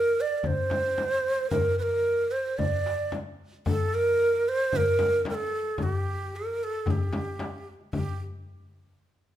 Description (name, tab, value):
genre	Turkish makam ensemble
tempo	112 BPM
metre	4/4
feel	straight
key	G makam huseyni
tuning	A4 = 442 Hz
part	breathy ney	melody	0.0-8.2 s	G4 to D5	-25 LUFS	right 1 dB	none
part	darbuka	percussion	0.0-8.2 s	none	-33 LUFS	left 2 dB	none
part	frame drum	percussion	0.4-8.2 s	none	-32 LUFS	left 2 dB	none
room	moderate recital hall reverb, RT60 1.4 s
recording	minimal, uncompressed stereo recording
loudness	-24 LUFS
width	side -11 dB against mid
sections	0.0-7.9 A section; 7.9-9.4 B section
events	none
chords	none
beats	0.44 0.98 | 1.51 2.05 2.59 3.12 | 3.66 4.19 4.73 5.27 | 5.80 6.34 6.87 7.41 | 7.94